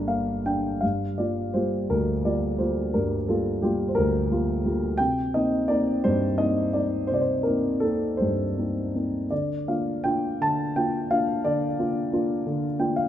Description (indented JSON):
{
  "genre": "classical, lyrical solo piano",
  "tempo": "52-60 BPM (dotted quarters)",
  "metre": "6/8",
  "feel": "rubato",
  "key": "unclear",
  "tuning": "A4 = 441 Hz",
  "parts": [
    { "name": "dark concert grand piano", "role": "solo", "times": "0.0-13.1 s", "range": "G1 to Bb5", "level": "-23 LUFS", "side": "equal", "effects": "none" }
  ],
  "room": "moderate recital hall reverb, RT60 1.6 s",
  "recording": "none",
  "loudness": "-23 LUFS",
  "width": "side -11 dB against mid",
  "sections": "0.8-13.1 A section",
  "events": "grand piano fill 0.0-0.8, 12.5-13.1",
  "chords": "0.0 Gm; 0.8 Gm7; 5.0 Cm7; 9.3 Bb/D"
}